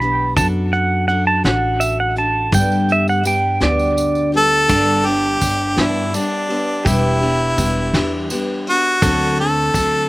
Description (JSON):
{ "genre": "acoustic folk duo or small band", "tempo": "56 BPM (dotted quarters)", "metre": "6/8", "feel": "straight", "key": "G major", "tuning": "A4 = 440 Hz", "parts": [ { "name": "pedal steel guitar", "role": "second line", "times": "0.0-10.1 s", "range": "D4 to B5", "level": "-20 LUFS", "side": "right 2 dB", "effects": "none" }, { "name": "picked steel-string acoustic guitar", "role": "accompaniment", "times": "0.0-10.1 s", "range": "G2 to A4", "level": "-22 LUFS", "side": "left 2 dB", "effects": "none" }, { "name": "upright bass", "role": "bass", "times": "0.0-10.1 s", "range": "E1 to G2", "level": "-21 LUFS", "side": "equal", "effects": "none" }, { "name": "soft brush drum kit", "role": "drums", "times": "0.0-9.9 s", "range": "hi-hat, kick drum, ride cymbal, snare drum", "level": "-23 LUFS", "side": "equal", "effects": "none" }, { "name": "tambourine", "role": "percussion", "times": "0.4-9.9 s", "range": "none", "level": "-29 LUFS", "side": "right 3 dB", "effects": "none" }, { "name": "clear harmonica", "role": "melody", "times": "4.4-10.1 s", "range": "D4 to A4", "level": "-17 LUFS", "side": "equal", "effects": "none" } ], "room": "little or no reverb", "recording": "recorded outdoors, with no room sound", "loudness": "-14 LUFS", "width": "side -20 dB against mid", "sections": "0.0-4.7 A section; 4.7-10.1 B section", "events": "pedal steel guitar solo 0.0-4.7", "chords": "0.4 D/F#; 2.5 G; 6.9 Em7; 9.0 D7", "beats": "| 0.37 1.45 | 2.53 3.62 | 4.70 5.78 | 6.86 7.94 | 9.03" }